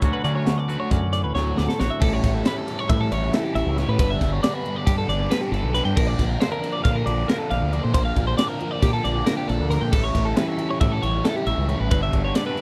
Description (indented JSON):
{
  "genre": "math rock and midwest emo",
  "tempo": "273 BPM (eighths)",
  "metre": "9/8",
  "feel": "straight",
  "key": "unclear",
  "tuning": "A4 = 439 Hz",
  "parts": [
    { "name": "twangy electric guitar", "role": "accompaniment", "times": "0.0-4.0 s", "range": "D2 to F#4", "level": "-32 LUFS", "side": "equal", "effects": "none" },
    { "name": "twelve-string electric guitar", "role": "arpeggios", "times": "0.0-12.6 s", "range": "G4 to G5", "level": "-29 LUFS", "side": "equal", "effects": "tape echo" },
    { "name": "growling fingered electric bass", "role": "bass", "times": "0.0-12.3 s", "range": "G1 to D3", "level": "-26 LUFS", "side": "equal", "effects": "overdrive" },
    { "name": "crisp fusion drum kit", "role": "drums", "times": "0.0-12.6 s", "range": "crash cymbal, hi-hat, kick drum, ride cymbal, snare drum", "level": "-27 LUFS", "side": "equal", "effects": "none" },
    { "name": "biting overdriven guitar", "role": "riff", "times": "0.2-12.6 s", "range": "G2 to F#4", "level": "-29 LUFS", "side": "equal", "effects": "phaser" }
  ],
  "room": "little or no reverb",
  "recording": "none",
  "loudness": "-22 LUFS",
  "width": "mono",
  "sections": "0.0-2.0 A section; 2.0-12.6 B section",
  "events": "drum fill 1.4-2.0",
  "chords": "0.0 Dmaj7; 2.0 A7; 4.0 Gadd9; 6.0 Bb; 9.9 A7; 11.9 G6"
}